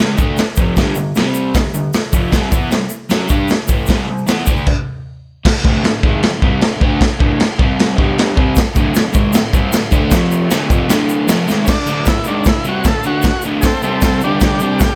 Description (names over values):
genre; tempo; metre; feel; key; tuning
garage rock duo or trio; 154 BPM; 4/4; straight; unclear; A4 = 440 Hz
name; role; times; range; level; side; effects
crunchy overdriven guitar; riff; 0.0-14.8 s; D2 to G4; -19 LUFS; equal; none
raw garage drum kit; drums; 0.0-14.9 s; crash cymbal, hi-hat, kick drum, snare drum; -17 LUFS; equal; none
egg shaker; percussion; 0.2-4.6, 8.6-14.9 s; none; -32 LUFS; equal; none
overdriven combo organ; melody; 11.6-15.0 s; C4 to A4; -22 LUFS; equal; none
room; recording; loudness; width
small room ambience; none; -15 LUFS; mono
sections
0.0-5.4 A section; 5.4-11.7 B section; 11.7-15.0 C section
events
stop 4.7-5.4; drum fill 11.5; transistor combo organ solo 11.7-15.0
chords
0.0 G5; 1.2 C5; 1.5 G5; 2.3 C5; 4.5 D5; 7.6 C5; 8.0 G5; 8.4 D5; 10.1 F5; 10.5 D5; 11.7 D; 13.8 C5; 14.2 G5; 14.6 Csus2